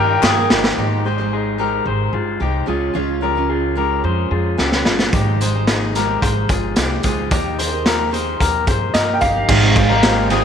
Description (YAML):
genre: jangly indie pop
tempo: 110 BPM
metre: 4/4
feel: straight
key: Ab major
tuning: A4 = 440 Hz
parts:
  - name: warm upright piano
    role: melody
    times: 0.0-0.5, 8.9-10.4 s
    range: Eb5 to G5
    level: -21 LUFS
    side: right 2 dB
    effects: tape echo
  - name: combo organ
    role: accompaniment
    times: 0.0-0.7, 9.5-10.4 s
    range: Ab3 to G4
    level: -25 LUFS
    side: right 12 dB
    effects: none
  - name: picked steel-string acoustic guitar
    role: accompaniment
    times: 0.0-10.4 s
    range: Ab2 to Db5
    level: -24 LUFS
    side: right 10 dB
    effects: none
  - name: electric guitar through a small old amp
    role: arpeggios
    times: 0.0-10.4 s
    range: Db4 to C5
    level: -21 LUFS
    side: left 10 dB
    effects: none
  - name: upright bass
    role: bass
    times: 0.0-10.4 s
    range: G1 to G2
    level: -21 LUFS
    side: equal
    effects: none
  - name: raw garage drum kit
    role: drums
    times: 0.2-0.8, 4.6-10.4 s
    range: crash cymbal, hi-hat, kick drum, ride cymbal, snare drum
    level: -18 LUFS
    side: equal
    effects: none
room: moderate echo chamber reverb, RT60 2.2 s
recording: 1960s-style stereo with parts hard left and right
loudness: -15 LUFS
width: side -8 dB against mid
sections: 0.8-9.5 A section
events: drum fill 0.0-0.8, 4.6-5.1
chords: 0.0 Eb; 0.8 Abmaj7; 2.7 Db; 5.1 Abmaj7; 7.3 Eb; 9.5 Abmaj7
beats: 0.23 | 0.78 1.32 1.86 2.41 | 2.95 3.50 4.04 4.59 | 5.13 5.68 6.22 6.77 | 7.31 7.86 8.40 8.95 | 9.49 10.04